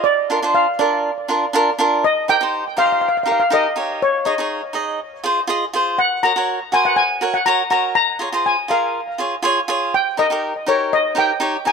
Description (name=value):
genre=calypso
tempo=122 BPM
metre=4/4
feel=straight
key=unclear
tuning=A4 = 438 Hz
part: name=steel pan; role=melody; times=0.0-11.7 s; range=Db5 to Bb5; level=-18 LUFS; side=left 1 dB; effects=tape echo
part: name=cavaquinho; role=accompaniment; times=0.0-11.7 s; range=D4 to Eb5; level=-19 LUFS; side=right 1 dB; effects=none
room=light reverb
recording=close, detailed microphones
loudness=-16 LUFS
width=side -5 dB against mid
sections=0.0-11.7 A section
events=none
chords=0.1 Bb; 2.0 Eb; 4.0 Absus4; 5.0 Fm; 6.0 Gb; 8.0 Db; 9.9 Eb